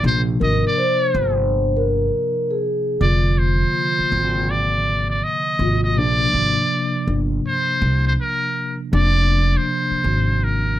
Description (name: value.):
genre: hip hop, jazz-hop.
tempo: 81 BPM.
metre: 4/4.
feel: swing 64% on 16ths.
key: unclear.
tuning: A4 = 443 Hz.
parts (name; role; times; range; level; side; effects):
trumpet with metal mute; melody; 0.0-10.8 s; Bb4 to Eb5; -21 LUFS; equal; none.
mellow tine electric piano; accompaniment; 0.0-10.8 s; C3 to F4; -24 LUFS; equal; medium stereo tremolo.
upright bass; bass; 0.0-10.8 s; F1 to C2; -20 LUFS; equal; none.
vibraphone with soft mallets; second line; 0.4-4.5 s; F4 to C5; -21 LUFS; equal; none.
room: light reverb.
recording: none.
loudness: -17 LUFS.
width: side -13 dB against mid.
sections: 0.0-10.8 A section.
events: none.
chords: 0.0 Bb69; 3.0 Fm6; 6.0 Bbadd9; 8.9 Fm6.